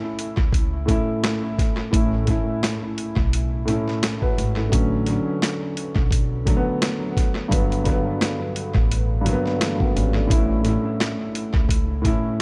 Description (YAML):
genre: hip hop, boom-bap hip-hop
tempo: 86 BPM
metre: 4/4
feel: swing 55% on 16ths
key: unclear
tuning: A4 = 441 Hz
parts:
  - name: dark concert grand piano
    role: accompaniment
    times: 0.0-12.4 s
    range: G2 to B4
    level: -26 LUFS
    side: equal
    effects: cassette tape, tape echo
  - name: boom bap sampler-style drum kit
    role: drums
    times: 0.2-12.2 s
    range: hi-hat, kick drum, snare drum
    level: -25 LUFS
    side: equal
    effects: tape echo
  - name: upright bass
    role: bass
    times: 0.4-12.1 s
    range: G1 to C#2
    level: -26 LUFS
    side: equal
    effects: none
room: studio ambience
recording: echo-heavy mix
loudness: -22 LUFS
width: mono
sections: 0.0-12.4 A section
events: none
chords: 0.0 A; 4.7 Dmaj7/A; 7.5 Gmaj7; 10.3 A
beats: 0.54 1.23 | 1.93 2.63 3.33 4.02 | 4.72 5.42 6.12 6.81 | 7.51 8.21 8.91 9.60 | 10.30 11.00 11.70 12.39